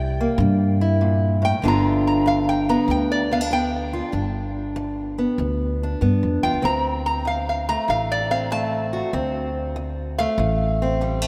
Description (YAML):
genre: acoustic country blues, solo or duo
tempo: 96 BPM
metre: 4/4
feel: swing 68% on 8ths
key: G mixolydian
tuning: A4 = 438 Hz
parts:
  - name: metal-body resonator slide guitar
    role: melody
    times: 0.0-11.3 s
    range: D5 to Bb5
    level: -27 LUFS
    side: equal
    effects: none
  - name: fingerpicked steel-string acoustic guitar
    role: accompaniment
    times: 0.0-11.3 s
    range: D2 to G4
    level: -26 LUFS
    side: equal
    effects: none
  - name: upright bass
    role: bass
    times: 0.0-11.3 s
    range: G1 to G2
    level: -26 LUFS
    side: equal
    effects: none
room: wet cathedral reverb, RT60 5.2 s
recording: in a vast, echoing space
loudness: -22 LUFS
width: mono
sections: 0.0-11.3 A section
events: resonator guitar played with a steel bar solo 0.0-11.3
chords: 0.0 C7; 1.6 G7; 6.6 D7(no3)